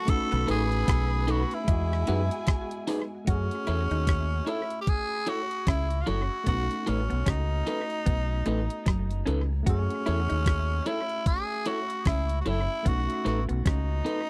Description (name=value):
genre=lovers rock reggae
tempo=75 BPM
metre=4/4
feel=swing 59% on 16ths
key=F# dorian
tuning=A4 = 440 Hz
part: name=raspy tenor saxophone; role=melody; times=0.0-14.3 s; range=C#4 to A4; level=-34 LUFS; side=equal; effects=tape echo
part: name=dark studio string section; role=second line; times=0.0-3.2 s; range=G#4 to B5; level=-42 LUFS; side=equal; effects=none
part: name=tine electric piano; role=accompaniment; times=0.0-14.3 s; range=G#3 to D#5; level=-39 LUFS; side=equal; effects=tape echo
part: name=crisp 8-bit digital drum machine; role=drums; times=0.1-14.3 s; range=hi-hat, kick drum, rim click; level=-30 LUFS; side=equal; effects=none
part: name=clean electric guitar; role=riff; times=0.3-13.9 s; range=F#3 to F#4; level=-41 LUFS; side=equal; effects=spring reverb, tape echo
part: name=deep dub fingered electric bass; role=bass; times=0.3-14.0 s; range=F#1 to F#2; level=-30 LUFS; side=equal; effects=none
part: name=electric guitar through a small old amp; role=stabs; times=0.5-14.2 s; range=D#4 to C#5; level=-34 LUFS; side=equal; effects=none
room=little or no reverb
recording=dry, close 1970s-style studio recording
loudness=-28 LUFS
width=mono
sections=0.0-3.3 A section; 3.3-14.3 B section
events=none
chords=0.1 B7; 1.7 Emaj7; 3.3 F#m7; 6.5 B7; 9.7 F#m7; 12.9 B7